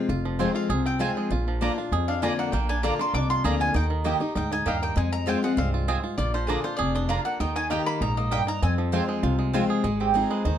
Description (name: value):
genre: bluegrass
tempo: 197 BPM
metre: 4/4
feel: straight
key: F dorian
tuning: A4 = 440 Hz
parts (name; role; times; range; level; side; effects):
- picked steel-string acoustic guitar; accompaniment; 0.0-10.6 s; F2 to G4; -28 LUFS; left 4 dB; none
- bluegrass banjo; melody; 0.1-10.6 s; Eb3 to Ab4; -31 LUFS; right 6 dB; none
- upright bass; bass; 0.1-10.6 s; F1 to F2; -27 LUFS; equal; none
- mandolin; stabs; 0.4-10.6 s; Bb3 to Bb5; -28 LUFS; right 7 dB; none
- mandolin; melody; 0.6-8.7 s; Ab4 to D6; -30 LUFS; left 2 dB; none
room: moderate studio ambience, RT60 0.5 s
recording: dark, warm production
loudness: -23 LUFS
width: side -10 dB against mid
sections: 0.1-9.8 A section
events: mandolin solo 0.0-9.8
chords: 0.1 Fm; 1.3 Bb; 3.8 Eb; 5.0 Fm; 6.2 Bb; 7.4 Eb; 8.6 Fm; 9.8 Ab6